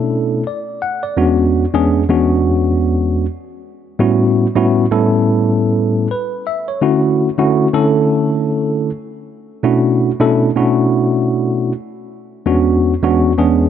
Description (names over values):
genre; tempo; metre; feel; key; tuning
hip hop; 85 BPM; 4/4; swing 61% on 16ths; D major; A4 = 439 Hz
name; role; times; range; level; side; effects
mellow tine electric piano; solo; 0.0-13.7 s; E2 to F#5; -13 LUFS; equal; slow stereo tremolo
room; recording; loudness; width
light reverb; dark, warm production; -13 LUFS; side -9 dB against mid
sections
0.0-13.7 A section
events
none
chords
0.0 Bm11; 1.2 E13; 4.0 A13; 6.8 Dmaj7; 9.6 Bm11; 12.5 E13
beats
0.47 | 1.17 1.88 2.59 3.29 | 4.00 4.70 5.41 6.12 | 6.82 7.53 8.23 8.94 | 9.64 10.35 11.06 11.76 | 12.47 13.17